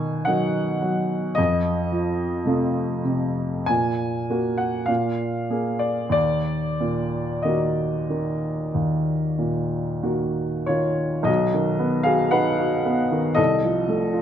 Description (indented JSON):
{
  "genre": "classical, romantic nocturne for solo piano",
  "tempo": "45-60 BPM",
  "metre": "4/4",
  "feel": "rubato",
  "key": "Eb minor",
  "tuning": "A4 = 440 Hz",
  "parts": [
    { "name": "warm baby grand piano", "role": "solo", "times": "0.0-14.2 s", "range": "B1 to Ab5", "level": "-20 LUFS", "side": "equal", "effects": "none" }
  ],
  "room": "light reverb",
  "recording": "close, detailed microphones",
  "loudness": "-20 LUFS",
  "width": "side -9 dB against mid",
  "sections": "0.0-11.3 A section; 11.3-14.2 B section",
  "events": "none",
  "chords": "0.0 B; 1.4 F7; 3.7 Gbadd9/Bb; 4.9 Bb5; 6.2 Ebm; 11.3 B; 13.4 F7/C"
}